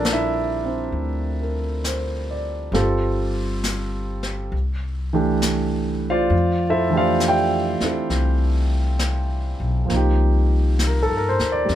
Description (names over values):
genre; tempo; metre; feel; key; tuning
jazz ballad; 67 BPM; 4/4; swing 68% on 8ths; F major; A4 = 440 Hz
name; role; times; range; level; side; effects
warm grand piano; accompaniment; 0.0-11.8 s; E3 to G5; -22 LUFS; right 1 dB; none
upright bass; bass; 0.0-11.8 s; G1 to G2; -22 LUFS; left 1 dB; none
vintage brush drum kit; drums; 0.0-11.8 s; brushed snare drum, hi-hat, snare drum; -29 LUFS; left 2 dB; none
room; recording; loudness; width
light reverb; none; -19 LUFS; side -11 dB against mid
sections
0.0-11.8 A section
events
none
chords
0.0 Bbmaj7; 2.7 Gsus2; 4.5 Cadd9; 6.3 Fmaj13; 9.9 Cm7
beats
0.05 0.94 1.84 | 2.74 3.64 4.53 5.43 | 6.32 7.21 8.11 9.01 | 9.90 10.80 11.70